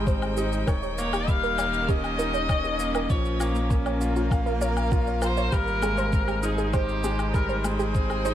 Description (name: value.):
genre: piano and strings electronica.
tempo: 99 BPM.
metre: 4/4.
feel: straight.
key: Ab major.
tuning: A4 = 443 Hz.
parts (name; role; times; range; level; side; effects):
rich string quartet; sustained chords; 0.0-8.3 s; Eb3 to G5; -33 LUFS; equal; sidechain pumping.
warbly dusty pluck; arpeggios; 0.0-8.3 s; F4 to Db5; -33 LUFS; right 4 dB; chorus, sidechain pumping, ping-pong delay.
bright grand piano; riff; 0.0-8.3 s; F3 to F5; -30 LUFS; equal; ping-pong delay.
warm sub bass; bass; 0.0-8.3 s; Eb1 to Bb1; -29 LUFS; equal; sidechain pumping.
electronic kick drum; drums; 0.1-8.1 s; none; -25 LUFS; equal; none.
shaker and woodblock; drums; 0.1-8.3 s; none; -36 LUFS; left 4 dB; none.
rich viola; melody; 1.0-8.3 s; G4 to F5; -30 LUFS; left 2 dB; none.
room: light reverb, studio reverb.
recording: none.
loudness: -22 LUFS.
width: side -11 dB against mid.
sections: 0.0-8.3 A section.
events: none.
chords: 0.0 Abmaj7; 0.7 Eb7; 3.1 Bbm; 5.5 Abmaj7.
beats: 0.07 | 0.68 1.28 1.89 2.49 | 3.10 3.71 4.31 4.92 | 5.53 6.13 6.74 7.34 | 7.95.